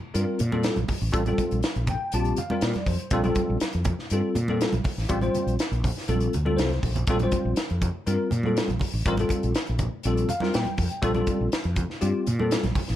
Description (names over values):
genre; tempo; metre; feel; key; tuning
electric jazz fusion; 121 BPM; 4/4; straight; unclear; A4 = 440 Hz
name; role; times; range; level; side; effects
bell-like tine electric piano; accompaniment; 0.1-12.8 s; G3 to A5; -27 LUFS; left 2 dB; ensemble chorus
mellow fretless electric bass; bass; 0.1-13.0 s; A1 to Bb2; -26 LUFS; equal; none
crisp fusion drum kit; drums; 0.1-12.9 s; hi-hat, kick drum, snare drum; -29 LUFS; equal; none
congas; percussion; 0.4-12.9 s; none; -33 LUFS; right 4 dB; none
room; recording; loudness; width
light reverb; tape saturation; -23 LUFS; side -12 dB against mid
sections
0.0-13.0 A section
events
tine electric piano fill 1.6-3.1, 6.3-7.1, 10.0-11.0; drum fill 6.5-7.1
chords
0.0 Bbmaj7sus2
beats
0.15 0.64 | 1.14 1.63 2.13 2.62 | 3.12 3.61 4.11 4.60 | 5.10 5.59 6.09 6.58 | 7.08 7.57 8.06 8.56 | 9.05 9.54 10.04 10.53 | 11.03 11.52 12.01 12.51